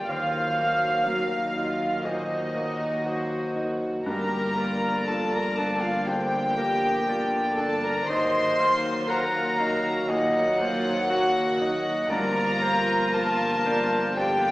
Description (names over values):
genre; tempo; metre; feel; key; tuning
cinematic, emotional film score for orchestra; 60 BPM; 4/4; rubato; unclear; A4 = 440 Hz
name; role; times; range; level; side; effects
warm studio violin section; melody; 0.0-14.5 s; D4 to G4; -36 LUFS; equal; none
warm violin; melody; 0.0-14.5 s; Eb5 to C6; -30 LUFS; left 1 dB; none
clear clarinet; second line; 0.0-14.5 s; Bb4 to Gb5; -31 LUFS; equal; none
hollow silver concert flute; second line; 0.0-14.5 s; Eb5 to C6; -32 LUFS; equal; none
warm studio violin section; second line; 0.0-14.5 s; Eb5 to C6; -33 LUFS; equal; none
bright grand piano; accompaniment; 0.0-14.5 s; Eb2 to G4; -31 LUFS; equal; none
dark studio viola section; accompaniment; 0.0-14.5 s; Gb3 to F5; -30 LUFS; right 1 dB; none
dark studio double bass section; bass; 0.0-14.5 s; G1 to Eb2; -40 LUFS; right 1 dB; none
warm studio cello section; bass; 0.0-14.5 s; Eb2 to G2; -39 LUFS; right 1 dB; none
mellow French horn section; sustained chords; 0.1-14.5 s; F3 to Bb3; -32 LUFS; equal; none
room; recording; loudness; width
wet recital hall reverb, RT60 1.5 s; recorded in a church or concert hall, small speaker sound; -22 LUFS; side -17 dB against mid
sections
0.0-14.5 A section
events
none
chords
0.1 Ebmadd9; 4.1 Gm7; 8.1 Ebmadd9; 12.1 Gm7